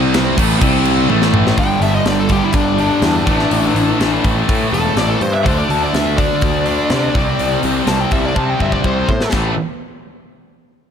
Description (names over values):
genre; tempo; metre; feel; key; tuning
hard rock; 124 BPM; 4/4; straight; A minor; A4 = 440 Hz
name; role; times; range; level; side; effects
raw garage guitar; riff; 0.0-1.6 s; A2 to C4; -20 LUFS; right 1 dB; overdrive, phaser
scooped high-gain guitar; riff; 0.0-9.5 s; G2 to D4; -20 LUFS; right 11 dB; distortion
tight distorted guitar; riff; 0.0-9.5 s; G2 to D4; -20 LUFS; left 14 dB; distortion
fuzz picked electric bass; bass; 0.0-9.6 s; E1 to C3; -19 LUFS; equal; overdrive
tight metal drum kit; drums; 0.1-9.4 s; crash cymbal, hi-hat, kick drum, snare drum, splash cymbal, toms; -20 LUFS; equal; none
high-gain lead guitar; melody; 1.6-9.3 s; D4 to A5; -20 LUFS; left 4 dB; distortion, slapback echo
room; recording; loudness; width
light reverb, studio reverb; none; -13 LUFS; side -8 dB against mid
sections
0.0-1.6 A section; 1.6-9.3 B section; 9.3-10.9 C section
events
drum fill 1.1-1.6, 8.4-9.3; lead electric guitar solo 1.6-9.3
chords
0.4 A5; 0.6 C5; 1.1 A5; 1.6 G5; 3.3 A5; 5.5 D5; 7.1 C5; 9.3 A5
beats
0.13 0.61 1.09 | 1.58 2.06 2.54 3.03 | 3.51 4.00 4.48 4.97 | 5.45 5.94 6.42 6.91 | 7.39 7.88 8.36 8.85 | 9.33